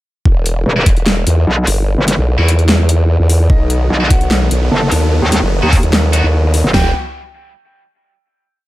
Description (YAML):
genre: heavy wobble dubstep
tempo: 148 BPM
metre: 4/4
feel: half-time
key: E harmonic minor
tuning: A4 = 439 Hz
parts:
  - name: formant-sweep wobble bass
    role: bass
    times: 0.3-6.9 s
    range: E1 to E2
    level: -12 LUFS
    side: equal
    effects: chorus, overdrive
  - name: dubstep drum kit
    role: drums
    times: 0.3-0.9, 3.5-6.8 s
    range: hi-hat, kick drum, snare drum, toms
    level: -12 LUFS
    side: equal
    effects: none
  - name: dubstep drum kit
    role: drums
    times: 0.5-6.6 s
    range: hi-hat, snare drum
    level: -17 LUFS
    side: equal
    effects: none
  - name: metallic wobble bass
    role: bass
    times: 0.7-6.7 s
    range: E1 to D#2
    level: -13 LUFS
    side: equal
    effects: chorus, overdrive
  - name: high-gain distorted guitar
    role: stabs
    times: 0.8-6.9 s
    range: G3 to F#4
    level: -21 LUFS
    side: equal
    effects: distortion, tape echo
  - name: dark grand piano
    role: melody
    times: 3.5-6.9 s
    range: D#4 to A5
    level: -24 LUFS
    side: left 1 dB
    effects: tape echo
  - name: supersaw chords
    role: sustained chords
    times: 3.5-6.9 s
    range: D#3 to G4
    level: -22 LUFS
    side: right 1 dB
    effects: phaser, sidechain pumping
room: digital ambience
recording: none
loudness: -10 LUFS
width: side -16 dB against mid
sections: 0.3-6.7 drop; 6.7-8.4 final chord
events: drop 0.3-6.7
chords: 0.3 Em; 3.5 B; 6.7 Emadd9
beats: | 0.25 0.66 1.06 1.47 | 1.88 2.28 2.69 3.09 | 3.50 3.90 4.31 4.71 | 5.12 5.53 5.93 6.34 | 6.74